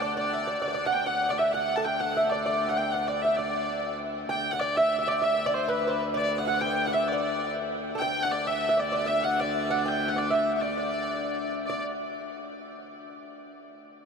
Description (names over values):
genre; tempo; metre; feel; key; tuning
medieval dance; 130 BPM (dotted quarters); 6/8; straight; D major; A4 = 439 Hz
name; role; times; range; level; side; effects
rich hurdy-gurdy; melody; 0.0-11.8 s; B4 to A5; -29 LUFS; left 2 dB; none
lute; second line; 0.0-11.8 s; A4 to G5; -28 LUFS; right 2 dB; none
clear viola da gamba; drone; 0.0-11.7 s; D2; -35 LUFS; left 2 dB; none
room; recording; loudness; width
wet huge ambient reverb, RT60 8.3 s; in a vast, echoing space; -25 LUFS; side -5 dB against mid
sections
0.0-4.3 A section; 4.3-11.7 B section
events
none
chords
none